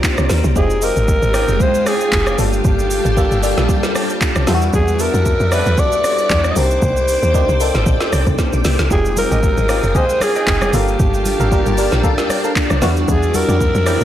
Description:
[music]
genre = amapiano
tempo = 115 BPM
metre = 4/4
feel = swing 55% on 16ths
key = F dorian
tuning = A4 = 440 Hz
[part]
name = breathy alto saxophone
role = melody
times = 0.0-14.0 s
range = G4 to Eb5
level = -19 LUFS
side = equal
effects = analog delay
[part]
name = barking FM electric piano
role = accompaniment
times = 0.0-14.0 s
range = E3 to A5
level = -22 LUFS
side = left 1 dB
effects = phaser
[part]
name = soft string machine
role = sustained chords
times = 0.0-14.0 s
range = G3 to Eb6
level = -24 LUFS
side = equal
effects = ensemble chorus
[part]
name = smooth R&B drum kit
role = drums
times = 0.0-14.0 s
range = handclaps, hi-hat, kick drum, rim click, shaker, snare drum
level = -19 LUFS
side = equal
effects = none
[part]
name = woody log drum bass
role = bass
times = 0.2-14.0 s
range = F1 to F2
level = -17 LUFS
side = equal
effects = none
[part]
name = congas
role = percussion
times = 9.2-13.9 s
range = none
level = -26 LUFS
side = left 2 dB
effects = none
[part]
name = percussive organ stab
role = stabs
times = 9.3-13.6 s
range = F#4 to G5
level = -26 LUFS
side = left 1 dB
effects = chorus, analog delay
[sound]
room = little or no reverb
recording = dry, gritty hardware recording, transformer saturation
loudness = -13 LUFS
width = side -12 dB against mid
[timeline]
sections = 0.0-14.0 A section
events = drum fill 8.4-8.9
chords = 0.0 Cm9; 0.6 Fm9; 2.4 Gm9; 4.5 Em9; 6.6 Cm9; 8.9 Fm9; 10.7 Gm9; 12.8 Em9

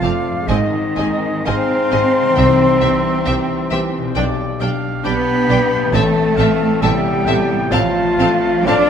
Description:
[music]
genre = cinematic, emotional film score for orchestra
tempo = 60-68 BPM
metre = 4/4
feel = rubato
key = C major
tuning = A4 = 440 Hz
[part]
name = warm studio violin section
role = melody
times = 0.0-8.8 s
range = G5 to A5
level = -29 LUFS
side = left 4 dB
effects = none
[part]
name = clear oboe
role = second line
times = 0.0-8.9 s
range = D5 to A5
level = -26 LUFS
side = right 2 dB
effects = none
[part]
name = dark clarinet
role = second line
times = 0.0-8.9 s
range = Ab3 to F4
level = -28 LUFS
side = equal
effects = none
[part]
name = silver concert flute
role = second line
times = 0.0-8.9 s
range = Eb5 to D6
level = -24 LUFS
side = left 1 dB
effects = none
[part]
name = warm studio violin section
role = second line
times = 0.0-8.8 s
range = D5 to F5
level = -28 LUFS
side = left 2 dB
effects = none
[part]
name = rich studio viola section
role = accompaniment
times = 0.0-8.8 s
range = C3 to D4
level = -28 LUFS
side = right 2 dB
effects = none
[part]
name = warm concert grand piano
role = accompaniment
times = 0.0-8.9 s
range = A1 to A4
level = -24 LUFS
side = left 1 dB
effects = none
[part]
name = dark French horn section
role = sustained chords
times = 0.0-8.9 s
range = Eb4 to D5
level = -19 LUFS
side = left 4 dB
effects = none
[part]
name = concert harp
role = arpeggios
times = 0.0-8.9 s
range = F2 to C6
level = -26 LUFS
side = left 7 dB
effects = none
[part]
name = warm studio cello section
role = bass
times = 0.0-8.9 s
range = Eb3 to D4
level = -21 LUFS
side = right 4 dB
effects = none
[part]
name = warm studio double bass section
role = bass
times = 0.0-8.8 s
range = F1 to C2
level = -22 LUFS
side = right 5 dB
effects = none
[part]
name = timpani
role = percussion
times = 2.4-3.7 s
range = C3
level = -23 LUFS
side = right 1 dB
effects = none
[sound]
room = wet scoring stage reverb, RT60 1.7 s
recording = none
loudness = -14 LUFS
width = side -8 dB against mid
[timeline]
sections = 0.0-8.9 A section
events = none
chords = 0.5 Ab; 2.4 C; 4.2 G/B; 5.9 Am; 7.7 F/A

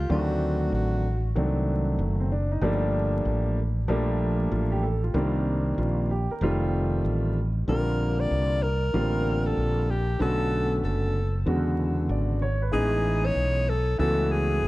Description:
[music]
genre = hip hop, jazz-hop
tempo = 95 BPM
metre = 4/4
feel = swing 64% on 16ths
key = unclear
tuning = A4 = 441 Hz
[part]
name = breathy alto saxophone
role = melody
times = 0.0-1.3, 7.7-14.7 s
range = F4 to D5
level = -29 LUFS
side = left 1 dB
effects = tape echo
[part]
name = mellow fretless electric bass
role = bass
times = 0.0-14.7 s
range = F1 to E2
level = -26 LUFS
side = equal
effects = none
[part]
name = dark baby grand piano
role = accompaniment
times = 0.1-14.7 s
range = C#3 to D5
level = -27 LUFS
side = equal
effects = none
[sound]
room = light reverb, studio reverb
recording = vinyl crackle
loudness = -23 LUFS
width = side -18 dB against mid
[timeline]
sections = 0.0-14.7 A section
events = none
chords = 0.1 D7b9; 2.6 Gm9; 5.1 Cm9; 6.4 F9; 7.7 Bb69; 10.2 Bm7; 11.5 E13; 12.7 Amaj9#11

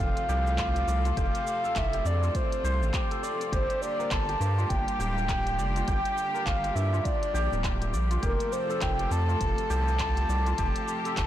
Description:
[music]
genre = organic downtempo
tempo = 102 BPM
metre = 4/4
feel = swing 60% on 16ths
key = unclear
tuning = A4 = 440 Hz
[part]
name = breathy flute-like synth lead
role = melody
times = 0.0-11.3 s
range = Bb4 to A5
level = -30 LUFS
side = equal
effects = chorus, ping-pong delay, shimmer reverb
[part]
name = muted studio string section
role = sustained chords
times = 0.0-11.3 s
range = C3 to A4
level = -36 LUFS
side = left 1 dB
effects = sidechain pumping, shimmer reverb
[part]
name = santur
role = arpeggios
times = 0.0-11.3 s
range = F4 to D5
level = -35 LUFS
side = left 1 dB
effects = vintage 12-bit sampler grit, ping-pong delay, shimmer reverb
[part]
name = round analog bass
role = bass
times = 0.0-11.3 s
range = D1 to G2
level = -28 LUFS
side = equal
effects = transformer saturation
[part]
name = electronic kick drum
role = drums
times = 0.0-11.3 s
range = none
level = -32 LUFS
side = equal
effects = overdrive
[part]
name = organic electronic drum kit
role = drums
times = 0.0-11.3 s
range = cabasa, handclaps, hi-hat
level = -37 LUFS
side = equal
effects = overdrive
[sound]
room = light reverb, digital ambience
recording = blown-out, overdriven recording, overdrive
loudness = -25 LUFS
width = side -12 dB against mid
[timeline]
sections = 0.0-11.3 A section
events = none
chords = 0.0 F; 3.5 Gm7; 8.2 F

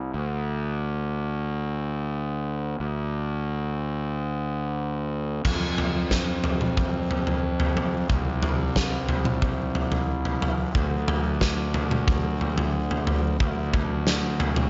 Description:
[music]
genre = post-rock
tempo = 90 BPM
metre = 4/4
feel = straight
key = unclear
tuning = A4 = 440 Hz
[part]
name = fuzz fingered electric bass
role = bass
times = 0.0-14.7 s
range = C2 to F2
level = -29 LUFS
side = equal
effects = overdrive
[part]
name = big rock drum kit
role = drums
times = 5.4-14.7 s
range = crash cymbal, kick drum, snare drum, toms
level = -27 LUFS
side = equal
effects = none
[sound]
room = little or no reverb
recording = nothing above 7.7 kHz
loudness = -26 LUFS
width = mono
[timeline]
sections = 0.0-5.4 A section; 5.4-14.7 B section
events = none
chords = none

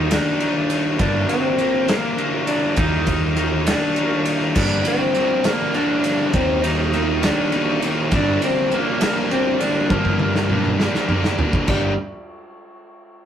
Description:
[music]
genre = indie rock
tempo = 67 BPM (dotted quarters)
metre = 6/8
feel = straight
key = G minor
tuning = A4 = 440 Hz
[part]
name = electric guitar through a small old amp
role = melody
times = 0.0-12.0 s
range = G3 to Eb4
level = -22 LUFS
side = equal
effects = spring reverb
[part]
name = biting overdriven guitar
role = riff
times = 0.0-11.9 s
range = G2 to G4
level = -23 LUFS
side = left 3 dB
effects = none
[part]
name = growling picked electric bass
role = bass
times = 0.0-12.0 s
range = G1 to G2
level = -24 LUFS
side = equal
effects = overdrive
[part]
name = loose indie drum kit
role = drums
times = 0.1-11.8 s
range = crash cymbal, kick drum, ride cymbal, snare drum, toms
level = -23 LUFS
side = right 1 dB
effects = none
[part]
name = raw garage guitar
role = riff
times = 4.6-11.9 s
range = G2 to Eb4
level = -25 LUFS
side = right 3 dB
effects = overdrive
[sound]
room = moderate studio reverb, RT60 0.6 s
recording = rough rehearsal-room recording, tube saturation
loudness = -17 LUFS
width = side -9 dB against mid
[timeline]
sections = 0.0-11.7 A section; 11.7-13.3 B section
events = drum fill 9.9-11.7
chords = 0.0 Eb; 1.0 Gm; 2.8 Eb; 4.6 Gm; 6.3 Eb; 8.1 Gm

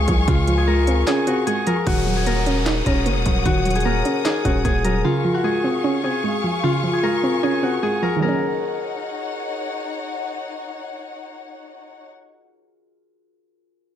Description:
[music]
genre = hip hop, trap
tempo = 151 BPM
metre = 4/4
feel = half-time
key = Eb dorian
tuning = A4 = 440 Hz
[part]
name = concert harp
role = melody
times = 0.0-10.3 s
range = F4 to Bb4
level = -22 LUFS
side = left 3 dB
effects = low-pass filter, diffuse ambient delay
[part]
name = soft round pluck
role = accompaniment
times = 0.0-12.1 s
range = Db3 to Eb4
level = -23 LUFS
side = right 4 dB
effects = chorus, low-pass filter
[part]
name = warm symphonic string section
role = sustained chords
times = 0.0-12.1 s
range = Eb4 to Eb6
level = -28 LUFS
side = left 3 dB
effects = none
[part]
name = distorted 808-style bass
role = bass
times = 0.0-5.0 s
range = Eb1 to Db2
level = -21 LUFS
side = equal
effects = distortion
[part]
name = trap drum kit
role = drums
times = 0.1-4.9 s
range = handclaps, hi-hat, kick drum, snare drum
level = -24 LUFS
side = equal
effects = none
[part]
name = downlifter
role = sound effects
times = 1.9-5.0 s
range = none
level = -32 LUFS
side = equal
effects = none
[sound]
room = moderate plate reverb, RT60 1.2 s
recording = dreamy mix soaked in reverb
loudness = -18 LUFS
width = side -10 dB against mid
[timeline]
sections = 0.0-1.9 A section; 1.9-8.2 B section; 8.2-11.4 C section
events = break 1.1-1.9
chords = 0.0 Dbmaj7; 1.9 Ebm7; 5.0 Dbmaj7; 8.2 Ebm7

